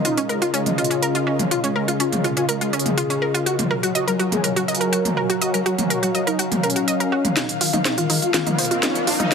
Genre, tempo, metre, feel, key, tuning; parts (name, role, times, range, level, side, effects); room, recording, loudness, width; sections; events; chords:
melodic techno; 123 BPM; 4/4; straight; Eb minor; A4 = 440 Hz
dark analog pad; sustained chords; 0.0-9.3 s; Db4 to Bb5; -28 LUFS; right 2 dB; chorus
analog pluck; arpeggios; 0.0-9.3 s; Db4 to Eb5; -24 LUFS; equal; chorus, tape echo
techno drum kit; drums; 0.0-9.3 s; hi-hat, snare drum, toms; -23 LUFS; right 1 dB
ethereal airy pad; texture; 0.0-9.3 s; Db3 to F5; -26 LUFS; equal; ensemble chorus, built-in reverb
analog synth brass; melody; 0.1-9.3 s; Eb3 to Bb4; -24 LUFS; left 3 dB; chorus, ping-pong delay
riser; sound effects; 8.1-9.3 s; -27 LUFS; right 1 dB
moderate huge ambient reverb, RT60 4.1 s; heavily compressed radio sound, multiband compression; -18 LUFS; side -6 dB against mid
0.0-7.4 A section; 7.4-9.3 B section
build-up 7.4-9.3; drum fill 7.4-9.3; filter sweep on analog polysynth 7.4-9.3; riser 8.1-9.3
0.0 Dbadd9; 3.5 Gbadd9; 7.4 Ebsus2